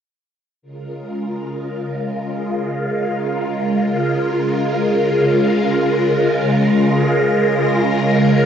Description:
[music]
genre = ambient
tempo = free time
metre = none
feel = none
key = Bb minor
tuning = A4 = 440 Hz
[part]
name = phased string machine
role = sustained chords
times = 0.8-8.5 s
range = Db3 to Bb4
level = -15 LUFS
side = equal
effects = ensemble chorus, phaser
[sound]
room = wet concert hall reverb, RT60 2.0 s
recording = worn, warbling old tape, cassette tape, warbly pitch drift, nothing above 7.8 kHz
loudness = -15 LUFS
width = side -8 dB against mid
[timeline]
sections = 0.6-8.5 A section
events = fade-in on string machine 0.6-8.5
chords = 0.6 Bbm7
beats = free time

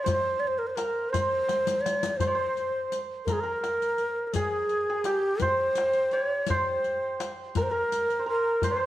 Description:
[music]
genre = Persian modal ensemble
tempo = 56 BPM (dotted quarters)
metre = 6/8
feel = straight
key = C dastgah homayun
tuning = A4 = 440 Hz
[part]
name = breathy ney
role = melody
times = 0.0-8.9 s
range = G4 to Db5+45c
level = -26 LUFS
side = equal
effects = none
[part]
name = santur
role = second line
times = 0.0-8.9 s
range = G4 to E5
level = -32 LUFS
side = right 3 dB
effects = none
[part]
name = riq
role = percussion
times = 0.1-8.8 s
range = none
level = -38 LUFS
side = left 6 dB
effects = none
[part]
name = tombak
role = percussion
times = 0.1-8.8 s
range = none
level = -33 LUFS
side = left 3 dB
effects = none
[sound]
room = moderate recital hall reverb, RT60 1.6 s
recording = worn, warbling old tape, cassette tape, warbly pitch drift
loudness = -25 LUFS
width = side -14 dB against mid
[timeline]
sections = 0.0-8.9 A section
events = drum fill 1.5-2.2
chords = none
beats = | 0.06 1.13 | 2.21 3.28 | 4.35 5.42 | 6.49 7.56 | 8.63

